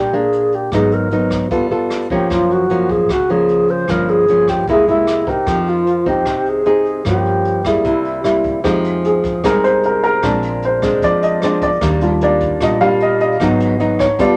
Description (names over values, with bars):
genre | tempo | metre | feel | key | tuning
bossa nova | 151 BPM | 4/4 | straight | F minor | A4 = 440 Hz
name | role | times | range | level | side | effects
mellow reedy alto flute | melody | 0.0-8.4 s | E4 to C5 | -18 LUFS | equal | none
nylon-string guitar | accompaniment | 0.0-14.4 s | Gb2 to A4 | -19 LUFS | equal | none
fingered electric bass | bass | 0.0-14.4 s | Gb1 to G2 | -28 LUFS | equal | none
jazz brush drum kit | drums | 0.1-14.3 s | hi-hat, kick drum, rim click | -30 LUFS | equal | none
warm baby grand piano | accompaniment | 5.3-14.4 s | G3 to F5 | -19 LUFS | equal | none
room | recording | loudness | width
moderate studio ambience, RT60 0.5 s | none | -16 LUFS | mono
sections
0.0-8.6 A section; 8.6-14.4 B section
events
grand piano solo 8.6-14.4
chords
0.0 Ebmaj7 (rootless); 0.7 Abm7; 1.5 G9; 2.3 Gbmaj7; 3.9 Gm7b5; 4.7 C7b13; 5.5 Fm7; 7.1 Gm7b5; 7.9 C7; 8.6 Fm7; 10.2 Bb9; 11.8 Ebmaj7; 13.4 Abm7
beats
0.33 | 0.72 1.12 1.51 1.91 | 2.31 2.70 3.10 3.49 | 3.89 4.28 4.68 5.08 | 5.47 5.87 6.26 6.66 | 7.06 7.46 7.85 8.25 | 8.64 9.04 9.44 9.84 | 10.23 10.63 11.03 11.42 | 11.82 12.21 12.61 13.01 | 13.40 13.80 14.20